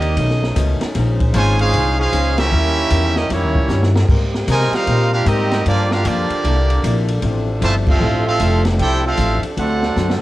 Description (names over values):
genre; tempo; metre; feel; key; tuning
jazz, big band swing; 153 BPM; 4/4; swing 64% on 8ths; unclear; A4 = 440 Hz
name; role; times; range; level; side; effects
brilliant trumpet section; melody; 0.0-10.2 s; Bb3 to A5; -20 LUFS; right 1 dB; cassette tape
bright trombone section; second line; 0.0-10.2 s; C3 to G4; -25 LUFS; right 6 dB; cassette tape
archtop guitar, miked and amplified; accompaniment; 0.0-10.2 s; G2 to Bb4; -27 LUFS; left 8 dB; cassette tape
clear trombone section; sustained chords; 0.0-10.2 s; C3 to C5; -25 LUFS; left 1 dB; cassette tape
upright bass; bass; 0.0-10.2 s; F1 to C3; -17 LUFS; equal; none
open jazz drum kit; drums; 0.0-10.2 s; crash cymbal, hi-hat, kick drum, ride cymbal, snare drum; -23 LUFS; equal; cassette tape
room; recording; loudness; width
little or no reverb; home recording on cassette; -14 LUFS; side -16 dB against mid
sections
0.0-10.2 A section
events
band accent 2.3, 7.8; drum fill 3.7-4.1, 10.0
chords
0.2 B9; 1.0 Bbm11; 2.5 Eb7b9; 4.1 Abmaj9; 5.7 Gm7; 6.4 C13; 7.2 Fmaj7; 9.6 D7